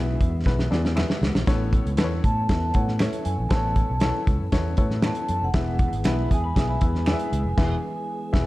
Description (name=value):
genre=uptempo 1960s-style soul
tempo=118 BPM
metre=4/4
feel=straight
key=A major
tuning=A4 = 440 Hz
part: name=vibraphone with medium mallets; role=melody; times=0.0-8.5 s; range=E5 to A5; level=-31 LUFS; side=right 1 dB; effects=analog delay
part: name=warm upright piano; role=accompaniment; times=0.0-8.5 s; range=A2 to E5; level=-31 LUFS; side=left 3 dB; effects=none
part: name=mellow tonewheel organ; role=sustained chords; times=0.0-8.5 s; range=E3 to A4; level=-36 LUFS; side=equal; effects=fast rotary speaker, chorus vibrato
part: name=fingered electric bass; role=bass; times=0.0-8.5 s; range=E1 to A2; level=-26 LUFS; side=equal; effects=none
part: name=warm soul drum kit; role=drums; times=0.2-8.5 s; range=crash cymbal, hi-hat, kick drum, snare drum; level=-23 LUFS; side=equal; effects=none
part: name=finger snaps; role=percussion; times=1.0-7.2 s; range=none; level=-39 LUFS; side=right 3 dB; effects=none
part: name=electric guitar through a small old amp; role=riff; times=6.0-7.4 s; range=E4 to B4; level=-35 LUFS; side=left 4 dB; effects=none
room=light reverb, small room ambience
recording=dark, warm production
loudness=-21 LUFS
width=side -18 dB against mid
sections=0.0-8.5 A section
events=drum fill 0.5-1.5; band accent 7.6-8.5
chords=0.0 E; 1.5 Aadd9; 5.5 E